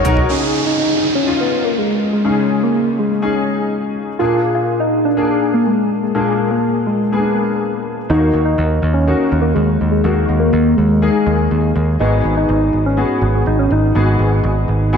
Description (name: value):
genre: pop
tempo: 123 BPM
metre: 4/4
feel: straight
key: unclear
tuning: A4 = 440 Hz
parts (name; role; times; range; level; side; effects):
- soft struck synth lead; melody; 0.0-15.0 s; Ab3 to F4; -17 LUFS; left 1 dB; chorus, phaser, tape echo
- clear concert grand piano; accompaniment; 0.0-15.0 s; Ab2 to Db5; -19 LUFS; left 2 dB; ensemble chorus
- picked electric bass; bass; 0.0-0.2, 8.1-15.0 s; Ab1 to Eb2; -16 LUFS; right 1 dB; none
- downlifter and reverse cymbal; sound effects; 0.3-4.2, 14.9-15.0 s; none; -24 LUFS; right 3 dB; none
room: wet lush hall reverb, RT60 1.6 s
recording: dreamy mix soaked in reverb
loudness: -13 LUFS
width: side -6 dB against mid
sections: 0.3-15.0 A section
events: none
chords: 0.3 Dbsus2; 4.2 Bb7; 8.1 Ebm; 12.0 Abm7